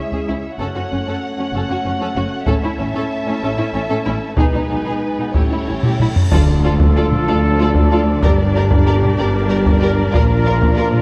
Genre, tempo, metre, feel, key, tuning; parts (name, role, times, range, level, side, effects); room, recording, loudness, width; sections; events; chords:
cinematic, epic orchestral film score; 63 BPM (dotted quarters); 6/8; straight; D minor from 6.3 s; A4 = 438 Hz
dark symphonic violin section; melody; 0.0-10.8 s; B4 to F#5; -31 LUFS; equal
warm symphonic violin section; second line; 0.0-10.9 s; B3 to Bb4; -29 LUFS; equal
warm symphonic viola section; accompaniment; 0.0-10.8 s; C#4 to G4; -28 LUFS; equal
dark French horn section; sustained chords; 0.0-11.0 s; F3 to E4; -28 LUFS; equal
warm studio string section; sustained chords; 0.0-11.0 s; G#3 to A5; -28 LUFS; equal
dark symphonic cello section; bass; 0.0-11.0 s; C#2 to B2; -26 LUFS; equal
warm studio double bass section; bass; 0.0-11.0 s; F#1 to D2; -24 LUFS; equal
solo taiko drums; drums; 0.1-11.0 s; -20 LUFS; equal
cymbal swell and impact; sound effects; 5.7-8.2 s; -30 LUFS; equal
warm trumpet section; stabs; 6.3-11.0 s; A4 to Bb4; -27 LUFS; equal
mellow tuba; bass; 6.3-11.0 s; G1 to D2; -23 LUFS; equal
timpani; percussion; 6.3-7.2 s; D3; -28 LUFS; equal
moderate concert hall reverb, RT60 2.2 s; dark, warm production; -17 LUFS; mono
0.0-6.3 A section; 6.3-11.0 B section
cymbal swell 5.7-6.3; drum fill 5.8-6.3; impact 6.3-8.2
0.0 C#m; 0.6 F#m; 2.5 A; 4.4 G#m/B; 5.3 A7; 6.3 Dm; 8.2 Gm; 10.1 Bb